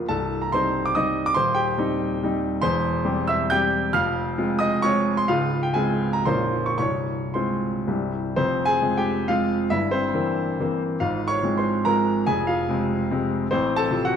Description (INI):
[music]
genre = classical, romantic triple-time dance for piano with dotted rhythms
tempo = 105-155 BPM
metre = 3/4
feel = rubato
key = F minor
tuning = A4 = 440 Hz
[part]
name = clear baby grand piano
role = solo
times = 0.0-14.2 s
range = Bb0 to G6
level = -20 LUFS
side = equal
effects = none
[sound]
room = moderate recital hall reverb, RT60 1.4 s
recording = dark, warm production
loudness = -20 LUFS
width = side -8 dB against mid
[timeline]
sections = 0.0-8.4 A section; 8.4-14.2 B section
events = none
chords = 0.1 Cm; 1.4 Cm/Eb; 2.6 C/E; 4.0 Fm; 5.3 Dbmaj7; 6.3 Bbm; 6.8 Fm/C; 7.9 C; 8.4 Fm; 9.7 C7/G; 11.0 Fm/Ab; 12.3 Fm; 13.5 F/A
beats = | 0.09 0.52 0.96 | 1.36 1.79 2.24 | 2.64 3.06 3.52 | 3.95 4.39 4.85 | 5.29 5.75 6.26 | 6.78 7.34 7.88 | 8.37 8.83 9.29 | 9.72 10.15 10.60 | 11.02 11.44 11.87 | 12.28 12.69 13.10 | 13.49 13.90